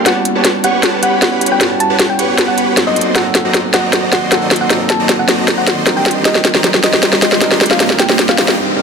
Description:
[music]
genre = future bass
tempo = 155 BPM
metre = 4/4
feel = half-time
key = unclear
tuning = A4 = 440 Hz
[part]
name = bright tine electric piano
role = accompaniment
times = 0.0-8.8 s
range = F#3 to Bb4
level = -20 LUFS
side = right 3 dB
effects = digital delay
[part]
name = ethereal airy pad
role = sustained chords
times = 0.0-8.5 s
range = Eb3 to D5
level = -24 LUFS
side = left 2 dB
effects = ensemble chorus, built-in reverb
[part]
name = supersaw chords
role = riff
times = 0.0-8.6 s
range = F#4 to C#6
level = -18 LUFS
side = right 1 dB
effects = low-pass filter
[part]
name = thumb-piano-like synth pluck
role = melody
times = 0.1-8.6 s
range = Eb5 to A5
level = -18 LUFS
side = left 1 dB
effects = chorus, ping-pong delay
[part]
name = trap drum kit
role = drums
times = 0.1-8.6 s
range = hi-hat, snare drum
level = -13 LUFS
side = left 1 dB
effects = none
[part]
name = riser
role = sound effects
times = 4.9-8.8 s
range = none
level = -23 LUFS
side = right 2 dB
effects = none
[sound]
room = light reverb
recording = dense, heavily limited modern master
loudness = -10 LUFS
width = side -6 dB against mid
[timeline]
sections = 0.0-8.8 A section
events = build-up 0.0-8.8; drum fill 0.0-8.6; riser 4.9-8.8; break 8.6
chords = 0.1 A13; 3.0 D7b9b13; 6.1 Cm9

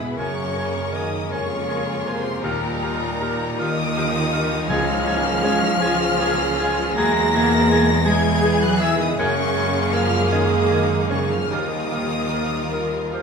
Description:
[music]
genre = cinematic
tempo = 53 BPM (dotted quarters)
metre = 6/8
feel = uneven beats, rubato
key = unclear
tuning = A4 = 442 Hz
[part]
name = warm studio violin section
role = melody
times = 0.0-13.2 s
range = Bb5 to Bb6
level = -27 LUFS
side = left 3 dB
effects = none
[part]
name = clear chamber violin section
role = second line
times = 0.0-13.2 s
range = Db4 to Bb4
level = -29 LUFS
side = left 3 dB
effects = none
[part]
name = mellow hollow concert flute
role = second line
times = 0.0-13.2 s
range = Bb4 to Bb5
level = -29 LUFS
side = left 1 dB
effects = none
[part]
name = bright concert grand piano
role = accompaniment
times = 0.0-13.2 s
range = Db2 to G#4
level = -28 LUFS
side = left 4 dB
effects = none
[part]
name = rich studio viola section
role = accompaniment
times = 0.0-13.2 s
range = E3 to Eb4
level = -28 LUFS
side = right 2 dB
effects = none
[part]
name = mellow French horn section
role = sustained chords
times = 0.0-13.2 s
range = F3 to Ab4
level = -27 LUFS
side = right 2 dB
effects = none
[part]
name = dark studio cello section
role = bass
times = 0.0-13.2 s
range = Bb2 to Bb3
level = -26 LUFS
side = right 1 dB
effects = none
[part]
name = rich studio double bass section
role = bass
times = 0.0-13.2 s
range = Db2 to G#2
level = -27 LUFS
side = right 3 dB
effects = none
[part]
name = warm clarinet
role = second line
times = 0.2-13.2 s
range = G4 to C5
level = -33 LUFS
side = left 3 dB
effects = none
[part]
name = warm cor anglais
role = second line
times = 0.2-13.2 s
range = F5 to Ab5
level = -31 LUFS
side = right 2 dB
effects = none
[part]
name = timpani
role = percussion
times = 4.7-5.8 s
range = Db3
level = -30 LUFS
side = left 1 dB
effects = none
[sound]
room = moderate scoring stage reverb, RT60 2.1 s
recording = minimal, uncompressed stereo recording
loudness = -18 LUFS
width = side -5 dB against mid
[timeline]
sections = 0.0-13.2 A section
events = none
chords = 0.2 Gbadd9; 2.4 Ebadd9; 4.7 Db; 7.0 E; 9.2 Gbadd9; 11.5 Ebadd9

